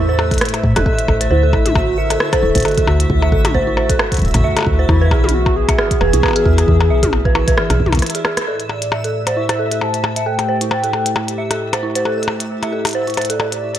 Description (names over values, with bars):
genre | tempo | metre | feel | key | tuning
IDM | 134 BPM | 4/4 | swing 56% on 16ths | unclear | A4 = 437 Hz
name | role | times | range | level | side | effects
hollow soft pad | sustained chords | 0.0-13.8 s | A2 to E5 | -23 LUFS | equal | chorus
dark detuned synth bell | arpeggios | 0.0-13.5 s | E4 to E5 | -21 LUFS | right 2 dB | chorus, low-pass filter, tape echo
woody FM bass | bass | 0.0-8.0 s | D1 to A2 | -16 LUFS | equal | none
backwards swelling texture | texture | 0.0-13.8 s | E4 to E5 | -29 LUFS | equal | built-in reverb
glitchy drum kit | drums | 0.2-13.8 s | hi-hat, percussion blips, rim click, toms | -21 LUFS | left 2 dB | none
electronic kick drum | drums | 0.3-8.0 s | none | -19 LUFS | equal | none
warbly nostalgic lead | melody | 1.3-11.8 s | E4 to A5 | -21 LUFS | left 1 dB | analog chorus, tape echo
room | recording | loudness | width
light reverb, digital ambience | none | -13 LUFS | side -11 dB against mid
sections
0.0-8.5 A section; 8.5-13.8 B section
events
break 8.0-8.5; drum fill 8.0-8.5; band accent 8.4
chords
0.0 Am7; 1.3 D7; 4.9 Eadd9; 8.5 Am7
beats
0.41 0.86 | 1.31 1.75 2.20 2.65 | 3.10 3.55 3.99 4.44 | 4.89 5.34 5.79 6.23 | 6.68 7.13 7.58 8.02 | 8.47 8.92 9.37 9.81 | 10.26 10.71 11.16 11.61 | 12.05 12.50 12.95 13.40